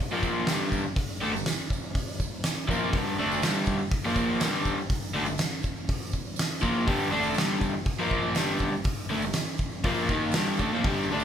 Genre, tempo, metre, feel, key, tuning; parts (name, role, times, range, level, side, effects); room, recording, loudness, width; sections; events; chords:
garage rock duo or trio; 122 BPM; 4/4; straight; G minor; A4 = 439 Hz
crunchy overdriven guitar; riff; 0.1-11.2 s; G2 to Eb4; -26 LUFS; equal
tambourine; percussion; 0.1-11.2 s; -44 LUFS; right 6 dB
oversized low-tuned drum kit; drums; 0.2-11.0 s; hi-hat, kick drum, snare drum; -29 LUFS; equal
light reverb; band playing live in one room; -25 LUFS; side -9 dB against mid
0.0-11.2 A section
0.0 Gm